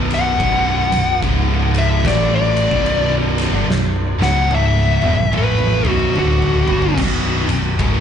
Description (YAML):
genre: stoner and doom metal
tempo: 73 BPM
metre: 4/4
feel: swing 62% on 8ths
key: B minor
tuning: A4 = 440 Hz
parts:
  - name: thick fuzz guitar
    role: riff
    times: 0.0-8.0 s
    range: B1 to A3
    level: -24 LUFS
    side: left 9 dB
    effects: distortion
  - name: thick fuzz guitar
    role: riff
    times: 0.0-7.0 s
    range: B1 to A3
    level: -23 LUFS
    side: right 9 dB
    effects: distortion
  - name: tight distorted guitar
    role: riff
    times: 0.0-8.0 s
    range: B1 to A3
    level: -24 LUFS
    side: right 2 dB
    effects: distortion, slapback echo
  - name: fingered electric bass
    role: bass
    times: 0.0-8.0 s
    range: B0 to A1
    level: -20 LUFS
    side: equal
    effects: tube saturation
  - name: fuzz lead guitar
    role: melody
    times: 0.1-7.0 s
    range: F#4 to F#5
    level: -19 LUFS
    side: left 3 dB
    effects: distortion, slapback echo, digital delay
  - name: oversized low-tuned drum kit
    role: drums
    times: 0.1-8.0 s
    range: crash cymbal, kick drum, ride cymbal, snare drum, toms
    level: -22 LUFS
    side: equal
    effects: none
room: little or no reverb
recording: live gig heard through the venue's PA, club reverb, nothing above 10.8 kHz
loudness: -14 LUFS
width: side -8 dB against mid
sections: 0.0-7.0 A section; 7.0-8.0 B section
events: lead electric guitar solo 0.0-7.0; drum fill 3.7-7.0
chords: 0.0 B5; 1.2 C#5; 2.0 Bm; 4.1 C#5; 4.9 Bm; 7.0 B5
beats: | 0.40 1.22 2.04 2.87 | 3.69 4.52 5.34 6.16 | 6.99 7.81